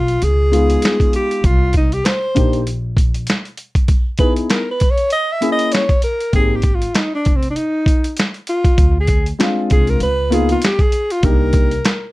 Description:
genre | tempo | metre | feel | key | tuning
hip hop, jazz-hop | 98 BPM | 4/4 | swing 58% on 16ths | unclear | A4 = 442 Hz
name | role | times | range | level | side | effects
breathy alto saxophone | melody | 0.0-12.1 s | C4 to Fb5 | -19 LUFS | equal | none
upright bass | bass | 0.0-11.8 s | F1 to D2 | -18 LUFS | equal | none
boom bap sampler-style drum kit | drums | 0.1-12.0 s | hi-hat, kick drum, snare drum | -16 LUFS | equal | none
dark concert grand piano | accompaniment | 0.5-11.7 s | Ab3 to G#4 | -19 LUFS | left 2 dB | none
room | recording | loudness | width
light reverb | dark, warm production | -14 LUFS | side -19 dB against mid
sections
0.0-12.1 A section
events
alto saxophone solo 0.0-12.1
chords
0.2 Db9; 1.4 C7(no3); 3.9 B6; 5.1 Bbm7b5; 6.3 Abmaj9; 8.8 Dm7b5; 10.0 Db13; 11.2 Cm7

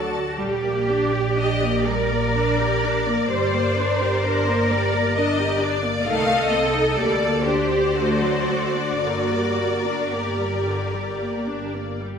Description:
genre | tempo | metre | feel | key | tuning
classical, slow romantic movement for string orchestra | 54-67 BPM | 3/4 | rubato | G minor | A4 = 440 Hz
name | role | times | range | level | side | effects
warm symphonic violin section | melody | 0.0-12.0 s | D5 to Eb5 | -28 LUFS | left 6 dB | none
clear symphonic violin section | second line | 0.0-11.7 s | Bb4 to A5 | -27 LUFS | left 2 dB | none
clear symphonic viola section | accompaniment | 0.0-12.2 s | D3 to A4 | -26 LUFS | equal | none
rich symphonic cello section | bass | 0.0-11.7 s | F#4 to C5 | -24 LUFS | right 2 dB | none
rich symphonic double bass section | bass | 0.0-12.0 s | G1 to D2 | -27 LUFS | right 1 dB | none
room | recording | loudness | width
wet scoring stage reverb, RT60 1.7 s | minimal, uncompressed stereo recording | -19 LUFS | side -7 dB against mid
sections
0.0-12.2 A section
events
none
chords
0.4 Gm/Bb; 3.3 Gm; 6.1 Adim/C; 7.0 Gm/D; 8.0 D; 9.0 Gm

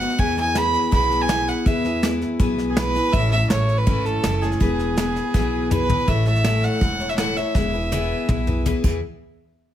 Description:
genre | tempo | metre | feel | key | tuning
honky-tonk and classic country | 163 BPM | 4/4 | straight | E major | A4 = 440 Hz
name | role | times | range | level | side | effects
clear fiddle | melody | 0.0-8.7 s | G#4 to B5 | -24 LUFS | right 2 dB | plate reverb
picked steel-string acoustic guitar | accompaniment | 0.0-9.0 s | A2 to C#5 | -24 LUFS | left 2 dB | none
soft brush drum kit | drums | 0.0-8.9 s | crash cymbal, hi-hat, kick drum, snare drum, toms | -23 LUFS | equal | none
upright bass | bass | 0.2-9.0 s | E1 to E2 | -24 LUFS | equal | none
room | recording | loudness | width
moderate studio reverb, RT60 0.9 s | none | -18 LUFS | side -11 dB against mid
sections
0.0-6.1 A section; 6.1-9.0 B section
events
drum fill 5.3-6.1, 7.5-9.0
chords
0.2 E; 3.1 A; 4.6 E; 6.1 A; 7.5 E; 9.0 N.C.

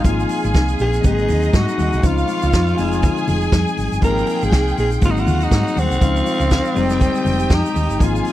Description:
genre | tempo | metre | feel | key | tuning
disco | 121 BPM | 4/4 | swing 56% on 16ths | Ab major | A4 = 440 Hz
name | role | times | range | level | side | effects
growling tenor saxophone | melody | 0.0-8.3 s | C4 to Bb4 | -22 LUFS | equal | none
warm studio string section | second line | 0.0-8.3 s | Eb4 to Ab5 | -26 LUFS | right 1 dB | none
tine electric piano | accompaniment | 0.0-8.3 s | F3 to Eb4 | -23 LUFS | left 6 dB | wide subtle chorus
tonewheel organ | sustained chords | 0.0-8.3 s | C4 to Eb6 | -30 LUFS | right 2 dB | overdrive, slow rotary speaker
hollow-body short-scale fingered electric bass | bass | 0.0-8.2 s | F1 to Ab2 | -20 LUFS | right 1 dB | none
vintage drum kit | drums | 0.0-8.3 s | hi-hat, kick drum, snare drum | -17 LUFS | equal | none
tube shaker | percussion | 0.0-8.3 s | none | -40 LUFS | right 18 dB | none
congas | percussion | 0.1-8.3 s | none | -29 LUFS | left 3 dB | none
room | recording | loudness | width
studio reverb | dry, close 1970s-style studio recording | -15 LUFS | side -14 dB against mid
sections
0.0-8.3 A section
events
none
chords
0.0 Ab6; 1.0 Ab7; 2.0 Dbmaj7; 2.8 Fm7; 4.0 Ab6; 5.0 Ab7; 6.0 Dbmaj7; 6.8 Fm9

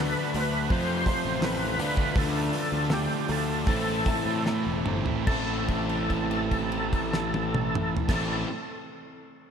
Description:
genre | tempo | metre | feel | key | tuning
classic rock | 72-85 BPM | 4/4 | straight | A minor | A4 = 441 Hz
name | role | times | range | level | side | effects
overdriven tonewheel organ | melody | 0.0-8.4 s | G4 to C5 | -31 LUFS | equal | slow rotary speaker, chorus vibrato, tape echo
warm upright piano | accompaniment | 0.0-8.4 s | A3 to C5 | -38 LUFS | right 4 dB | none
string machine, cellos | sustained chords | 0.0-8.5 s | E3 to A4 | -42 LUFS | equal | none
cranked stack guitar | riff | 0.0-8.5 s | F2 to F#4 | -35 LUFS | right 10 dB | overdrive, slapback echo
fuzz guitar | riff | 0.0-8.5 s | F2 to D4 | -35 LUFS | right 2 dB | distortion, slapback echo
overdriven semi-hollow guitar | riff | 0.0-8.5 s | A2 to F#4 | -32 LUFS | left 9 dB | slapback echo
fuzz picked electric bass | bass | 0.0-8.4 s | E1 to A2 | -32 LUFS | equal | overdrive
damped 70s drum kit | drums | 0.3-8.3 s | crash cymbal, hi-hat, kick drum, snare drum, toms | -31 LUFS | equal | none
room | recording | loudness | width
moderate lush hall reverb, RT60 2.5 s | big arena sound | -24 LUFS | side -7 dB against mid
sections
0.0-5.3 A section; 5.3-8.6 B section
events
slowing down 0.0-5.3; drum fill 4.5-5.3; held note 5.3-8.1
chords
0.0 D; 0.7 F; 1.8 Dm; 3.7 Am

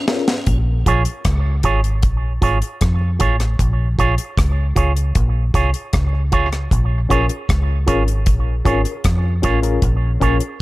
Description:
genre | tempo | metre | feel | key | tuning
dub reggae | 77 BPM | 4/4 | straight | Bb minor | A4 = 441 Hz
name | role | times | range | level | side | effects
reed electric piano | stabs | 0.1-0.3, 7.1-10.4 s | Db4 to Bb4 | -24 LUFS | left 5 dB | overdrive, fast tremolo, tape echo
deep reggae drum kit | drums | 0.1-10.6 s | hi-hat, kick drum, rim click, snare drum | -19 LUFS | equal | none
deep dub fingered electric bass | bass | 0.5-10.4 s | Ab1 to F2 | -18 LUFS | equal | none
electric guitar with an envelope filter | accompaniment | 0.9-10.4 s | F4 to Db5 | -23 LUFS | right 5 dB | tape echo
room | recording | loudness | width
small room ambience | none | -15 LUFS | side -19 dB against mid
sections
0.5-10.6 A section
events
break 0.0-0.5; drum fill 0.0-0.5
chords
0.5 Bbm7

